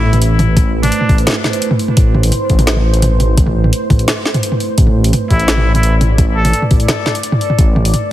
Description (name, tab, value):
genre	half-time drum and bass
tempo	171 BPM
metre	4/4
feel	half-time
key	A minor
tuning	A4 = 440 Hz
part	trumpet with straight mute	melody	0.0-1.2, 5.3-6.6 s	D4 to A4	-21 LUFS	left 1 dB	ping-pong delay
part	deep dark ambient pad	sustained chords	0.0-8.1 s	A3 to D5	-20 LUFS	right 2 dB	chorus, built-in reverb, sidechain pumping
part	dark detuned saw bass	bass	0.0-7.9 s	A1	-13 LUFS	equal	none
part	drum and bass drum kit	drums	0.1-8.0 s	hi-hat, snare drum, toms	-16 LUFS	equal	overdrive
part	electronic kick drum	drums	0.6-7.7 s	none	-12 LUFS	equal	overdrive
room	digital ambience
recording	heavily compressed radio sound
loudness	-10 LUFS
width	side -14 dB against mid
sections	0.0-8.1 A section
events	none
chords	0.0 Am